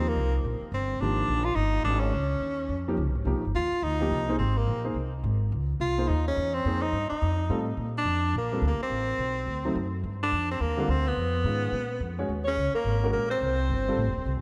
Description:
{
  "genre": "jazz, small-group swing and bop",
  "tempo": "212 BPM",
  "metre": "4/4",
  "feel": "swing 61% on 8ths",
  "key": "Bb major from 7.8 s",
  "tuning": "A4 = 440 Hz",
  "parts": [
    { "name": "bright tenor saxophone", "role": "melody", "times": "0.0-14.4 s", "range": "Bb3 to F4", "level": "-32 LUFS", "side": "equal", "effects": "analog delay" },
    { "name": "clear concert grand piano", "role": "accompaniment", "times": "0.0-14.0 s", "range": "D3 to Db5", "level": "-36 LUFS", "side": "equal", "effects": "none" },
    { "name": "upright bass", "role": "bass", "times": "0.0-14.4 s", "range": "Eb1 to Bb2", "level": "-31 LUFS", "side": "equal", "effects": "none" },
    { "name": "breathy alto saxophone", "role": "second line", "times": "12.4-14.4 s", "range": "Bb4 to Db5", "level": "-34 LUFS", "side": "equal", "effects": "none" }
  ],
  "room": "moderate lush hall reverb, RT60 2.5 s",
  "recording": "dreamy mix soaked in reverb",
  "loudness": "-28 LUFS",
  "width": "mono",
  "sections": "0.0-7.8 A section; 7.8-14.4 B section",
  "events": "none",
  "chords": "0.0 Eb69; 1.0 Absus2; 2.1 Dbadd9; 3.3 Cm11; 4.4 Ab; 5.5 Dbmaj9; 6.6 Fm9; 7.2 F7; 7.8 Bb; 8.9 Amadd9; 9.5 D7b9; 10.0 Gm7; 11.2 Fm7b5; 11.7 Bb5; 12.3 Eb7(no3); 13.4 C5"
}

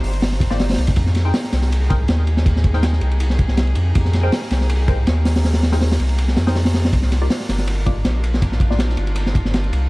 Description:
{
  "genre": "drum and bass, jungle",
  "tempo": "161 BPM",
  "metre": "4/4",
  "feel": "straight",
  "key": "unclear",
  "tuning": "A4 = 440 Hz",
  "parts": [
    { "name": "rich chamber string section", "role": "sustained chords", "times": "0.0-9.9 s", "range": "Bb3 to C5", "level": "-31 LUFS", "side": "equal", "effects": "none" },
    { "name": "saturated sub bass", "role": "bass", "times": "0.0-9.9 s", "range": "G1 to F2", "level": "-17 LUFS", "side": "equal", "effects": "none" },
    { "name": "crunchy breakbeat drum kit", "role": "drums", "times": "0.0-9.8 s", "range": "hi-hat, kick drum, ride cymbal, snare drum", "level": "-19 LUFS", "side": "equal", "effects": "none" },
    { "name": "filtered dub chord stab", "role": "stabs", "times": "0.5-8.8 s", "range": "Bb3 to G5", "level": "-30 LUFS", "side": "left 2 dB", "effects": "phaser, wide subtle chorus, dub echo" }
  ],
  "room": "studio ambience",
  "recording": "dark, warm production, vinyl crackle",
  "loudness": "-15 LUFS",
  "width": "side -23 dB against mid",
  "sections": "0.0-9.9 A section",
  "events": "none",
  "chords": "0.0 Cm11; 1.0 Fm11; 6.9 Cm11"
}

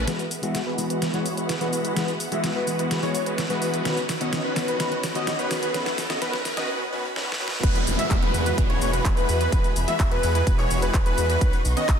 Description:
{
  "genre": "EDM, festival progressive house",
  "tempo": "127 BPM",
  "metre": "4/4",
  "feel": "straight",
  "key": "E major",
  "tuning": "A4 = 440 Hz",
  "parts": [
    { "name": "mellow electric guitar", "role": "accompaniment", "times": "0.0-6.7 s", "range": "D#3 to F#4", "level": "-31 LUFS", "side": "left 4 dB", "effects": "sidechain pumping, digital delay" },
    { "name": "dark studio string section", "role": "sustained chords", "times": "0.0-12.0 s", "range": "B3 to C#6", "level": "-36 LUFS", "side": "equal", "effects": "sidechain pumping" },
    { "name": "big supersaw lead", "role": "riff", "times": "0.0-12.0 s", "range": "D#3 to E5", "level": "-28 LUFS", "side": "equal", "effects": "sidechain pumping, low-pass filter, digital delay" },
    { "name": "wide detuned saw bass", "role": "bass", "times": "0.0-0.1, 7.6-12.0 s", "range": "E1 to E2", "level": "-26 LUFS", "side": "equal", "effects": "chorus, sidechain pumping" },
    { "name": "riser and downlifter", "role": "sound effects", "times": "0.0-11.4 s", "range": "none", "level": "-33 LUFS", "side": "equal", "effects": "none" },
    { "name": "wide unison lead", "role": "arpeggios", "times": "0.1-12.0 s", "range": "B4 to E5", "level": "-29 LUFS", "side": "equal", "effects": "lush chorus, vintage 12-bit sampler grit, sidechain pumping, digital delay" },
    { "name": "pop drum kit", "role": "drums", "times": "0.1-12.0 s", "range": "cabasa, crash cymbal, handclaps, hi-hat, snare drum", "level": "-29 LUFS", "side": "equal", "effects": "overdrive" },
    { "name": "electronic kick drum", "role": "drums", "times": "7.6-12.0 s", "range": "none", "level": "-22 LUFS", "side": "equal", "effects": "none" }
  ],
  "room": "light reverb, digital ambience",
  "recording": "dense, heavily limited modern master, high-pass filter",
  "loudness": "-21 LUFS",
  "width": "side -8 dB against mid",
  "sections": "0.1-7.6 A section; 7.6-12.0 B section",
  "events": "build-up 0.1-7.6; drum fill 0.1-6.7, 7.2-7.6; riser 0.1-6.7; filter sweep on supersaw synth 0.1-7.6; filter sweep on analog synth lead 0.1-7.6; filter sweep 0.1-7.6; drop 7.6-12.0",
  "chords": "0.1 Eadd9; 3.9 Badd9; 5.7 Aadd9; 7.6 Eadd9; 11.4 Badd9"
}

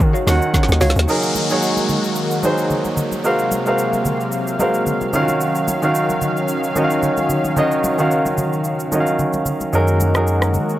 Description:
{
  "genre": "amapiano",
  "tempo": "111 BPM",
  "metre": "4/4",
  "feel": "swing 55% on 16ths",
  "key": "Eb dorian",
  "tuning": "A4 = 436 Hz",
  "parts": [
    { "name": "warm grand piano", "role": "accompaniment", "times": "0.0-10.8 s", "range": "Eb3 to Gb5", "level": "-19 LUFS", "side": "right 1 dB", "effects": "none" },
    { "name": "lush unison pad", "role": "sustained chords", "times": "0.0-10.8 s", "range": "C3 to F5", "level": "-22 LUFS", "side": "left 1 dB", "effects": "chorus, sidechain pumping" },
    { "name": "hollow log drum bass", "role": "bass", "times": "0.0-1.1 s", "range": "Db2 to Eb3", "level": "-17 LUFS", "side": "equal", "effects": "none" },
    { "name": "afro-pop drum kit", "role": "drums", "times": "0.0-10.8 s", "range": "hi-hat, kick drum, rim click, shaker, snare drum", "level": "-23 LUFS", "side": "equal", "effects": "none" },
    { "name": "congas", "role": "percussion", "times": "0.3-10.7 s", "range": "none", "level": "-26 LUFS", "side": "equal", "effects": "none" },
    { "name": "mallet-like synth pluck", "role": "stabs", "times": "0.8-1.1 s", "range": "Gb4 to F5", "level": "-25 LUFS", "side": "equal", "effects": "chorus, phaser, tape echo" },
    { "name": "downlifter", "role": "sound effects", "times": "1.1-5.4 s", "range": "none", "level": "-27 LUFS", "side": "left 2 dB", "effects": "none" },
    { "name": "saturated sub bass", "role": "bass", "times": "9.7-10.6 s", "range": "Gb2", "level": "-17 LUFS", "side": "equal", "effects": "none" }
  ],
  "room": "little or no reverb",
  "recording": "dry, gritty hardware recording, faint mains hum",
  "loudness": "-16 LUFS",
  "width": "side -14 dB against mid",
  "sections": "0.0-1.1 A section; 1.1-10.8 B section",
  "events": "drop 0.0-1.1; drum fill 0.5-1.1",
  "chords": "0.0 Ebm9; 1.1 Gb69; 3.2 Ab13; 5.1 Ebm9; 9.7 Gb69"
}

